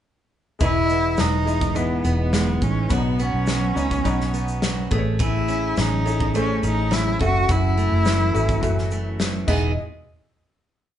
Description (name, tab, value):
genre	acoustic pop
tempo	105 BPM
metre	4/4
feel	straight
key	E major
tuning	A4 = 440 Hz
part	warm cello	melody	0.6-9.2 s	B3 to F#4	-24 LUFS	equal	none
part	felt-muted upright piano	accompaniment	0.6-9.8 s	G#3 to E5	-30 LUFS	left 2 dB	none
part	picked steel-string acoustic guitar	accompaniment	0.6-9.7 s	F#2 to G#4	-28 LUFS	right 3 dB	none
part	vintage muted fingered electric bass	bass	0.6-9.7 s	E1 to C#2	-23 LUFS	equal	none
part	natural country drum kit	drums	0.6-9.6 s	crash cymbal, kick drum, shaker, snare drum	-25 LUFS	equal	none
room	wet studio reverb, RT60 0.7 s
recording	band playing live in one room, nothing above 10.6 kHz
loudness	-19 LUFS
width	side -10 dB against mid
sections	0.6-9.8 chorus; 9.8-11.0 final hit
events	none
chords	0.6 Emaj7; 2.9 Badd9; 4.9 Amaj7; 7.2 F#m7; 9.5 Emaj7; 9.8 N.C.